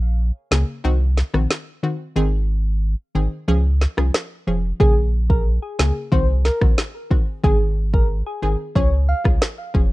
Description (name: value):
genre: dancehall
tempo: 91 BPM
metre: 4/4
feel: straight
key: unclear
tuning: A4 = 438 Hz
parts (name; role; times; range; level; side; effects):
- analog pluck; accompaniment; 0.0-9.9 s; Db3 to Ab4; -24 LUFS; left 2 dB; chorus
- warm sub bass; bass; 0.0-9.9 s; F1 to Db2; -19 LUFS; equal; none
- afro-pop drum kit; drums; 0.5-9.9 s; kick drum, rim click, snare drum; -18 LUFS; equal; vintage 12-bit sampler grit
- soft struck synth lead; melody; 4.8-9.2 s; Ab4 to F5; -25 LUFS; equal; chorus, tape echo
room: little or no reverb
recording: dark, warm production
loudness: -17 LUFS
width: side -19 dB against mid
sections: 0.0-9.9 A section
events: break 0.0-4.8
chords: 0.0 Bbm7; 0.8 Cdim; 2.2 Ab; 3.5 Db; 4.8 Bbm7; 6.1 Cdim; 7.4 Ab; 8.8 Db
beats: 0.19 0.85 1.51 | 2.17 2.83 3.48 4.14 | 4.80 5.46 6.12 6.78 | 7.44 8.10 8.76 9.42